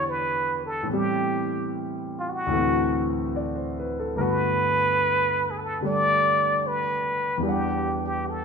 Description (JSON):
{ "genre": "jazz", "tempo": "73 BPM", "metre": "4/4", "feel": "swing 68% on 8ths", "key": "unclear", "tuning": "A4 = 440 Hz", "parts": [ { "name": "trumpet with plunger mute", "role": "melody", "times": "0.0-8.4 s", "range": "F4 to D5", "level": "-24 LUFS", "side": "right 1 dB", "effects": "none" }, { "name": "warm concert grand piano", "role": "accompaniment", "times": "0.0-8.4 s", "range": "D2 to F#5", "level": "-26 LUFS", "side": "left 1 dB", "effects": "none" } ], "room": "wet echo chamber reverb, RT60 1.9 s", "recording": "minimal, uncompressed stereo recording", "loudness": "-22 LUFS", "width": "side -5 dB against mid", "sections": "0.0-8.4 A section", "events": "none", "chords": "0.0 Em9; 0.9 Am7; 2.5 D9; 4.2 Gmaj9; 7.5 Em9" }